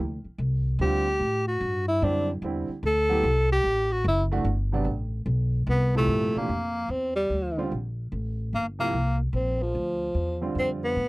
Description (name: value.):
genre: modal jazz.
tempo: 148 BPM.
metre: 3/4.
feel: swing 66% on 8ths.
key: G dorian.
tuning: A4 = 438 Hz.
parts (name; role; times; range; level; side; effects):
upright bass; bass; 0.0-11.1 s; F#1 to A2; -27 LUFS; equal; none.
breathy tenor saxophone; melody; 0.8-11.1 s; F3 to A4; -25 LUFS; equal; none.
warm concert grand piano; accompaniment; 0.8-10.9 s; Bb2 to G4; -30 LUFS; right 3 dB; none.
room: light reverb.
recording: dry, close 1970s-style studio recording.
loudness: -24 LUFS.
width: side -22 dB against mid.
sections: 0.0-6.1 A section; 6.1-11.1 B section.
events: tenor saxophone solo 0.0-6.1.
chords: 0.0 G7(no3); 1.2 Am11; 6.1 Gm11.